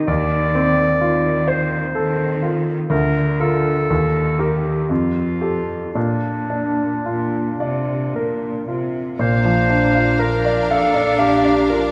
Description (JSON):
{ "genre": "classical, romantic movement for piano and orchestra", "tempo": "54-64 BPM", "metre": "3/4", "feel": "rubato", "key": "Bb major", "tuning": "A4 = 438 Hz", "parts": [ { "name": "clear grand piano", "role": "melody", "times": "0.0-11.9 s", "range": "D2 to F5", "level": "-22 LUFS", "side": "equal", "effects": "none" }, { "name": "bright clarinet", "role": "second line", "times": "0.1-11.9 s", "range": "D4 to D5", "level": "-24 LUFS", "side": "equal", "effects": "none" }, { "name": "rich symphonic cello section", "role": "bass", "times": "0.1-11.9 s", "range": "F2 to D4", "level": "-27 LUFS", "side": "equal", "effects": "none" }, { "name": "warm symphonic violin section", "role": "melody", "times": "9.2-11.9 s", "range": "Bb5", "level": "-36 LUFS", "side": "equal", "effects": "none" }, { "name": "clear symphonic violin section", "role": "second line", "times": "9.2-11.9 s", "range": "F5", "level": "-29 LUFS", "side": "equal", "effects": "none" }, { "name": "clear symphonic viola section", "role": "accompaniment", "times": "9.2-11.9 s", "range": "D4", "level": "-30 LUFS", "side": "equal", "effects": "none" }, { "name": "rich symphonic double bass section", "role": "bass", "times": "9.2-11.9 s", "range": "Bb1", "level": "-28 LUFS", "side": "equal", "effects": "none" } ], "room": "wet scoring stage reverb, RT60 1.9 s", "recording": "none", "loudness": "-19 LUFS", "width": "mono", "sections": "0.0-9.2 A section; 9.2-11.9 B section", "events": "none", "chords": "0.1 F7/Eb; 2.9 Bb/D; 3.9 Eb; 4.9 Fadd9; 6.0 Bb", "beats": "| 0.08 1.02 1.96 | 2.91 3.90 4.90 | 5.95 7.05 8.15 | 9.20 10.19 11.19" }